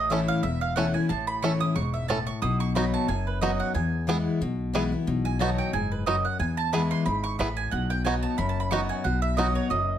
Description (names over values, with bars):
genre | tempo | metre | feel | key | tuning
bluegrass | 181 BPM | 4/4 | swing 55% on 8ths | B mixolydian | A4 = 439 Hz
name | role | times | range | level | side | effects
picked steel-string acoustic guitar | accompaniment | 0.0-10.0 s | E2 to F#4 | -28 LUFS | left 4 dB | none
mandolin | stabs | 0.0-10.0 s | B4 to D#6 | -30 LUFS | right 5 dB | none
upright bass | bass | 0.0-10.0 s | E1 to E2 | -30 LUFS | equal | none
bluegrass banjo | melody | 0.1-9.5 s | B3 to A4 | -29 LUFS | right 3 dB | none
room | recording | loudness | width
moderate studio reverb, RT60 0.7 s | none | -24 LUFS | side -10 dB against mid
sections
0.0-3.7 A section; 3.7-10.0 A section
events
mandolin solo 0.0-10.0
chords
0.0 A; 2.4 B; 3.7 E; 5.1 B; 6.4 E; 7.7 B